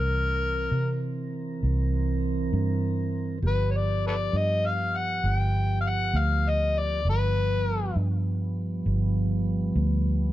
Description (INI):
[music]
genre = slow blues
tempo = 66 BPM (dotted quarters)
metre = 12/8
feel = straight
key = unclear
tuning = A4 = 440 Hz
[part]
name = overdriven harmonica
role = melody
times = 0.0-7.9 s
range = A4 to G5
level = -27 LUFS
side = left 3 dB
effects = none
[part]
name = mellow tonewheel organ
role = sustained chords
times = 0.0-10.3 s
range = E3 to Bb4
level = -31 LUFS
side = right 2 dB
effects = slow rotary speaker
[part]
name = vintage muted fingered electric bass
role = bass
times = 0.0-10.3 s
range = G1 to C3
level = -26 LUFS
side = right 1 dB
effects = none
[sound]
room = light reverb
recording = none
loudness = -24 LUFS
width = side -14 dB against mid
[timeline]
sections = 0.0-10.3 A section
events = none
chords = 0.0 C7; 3.4 G7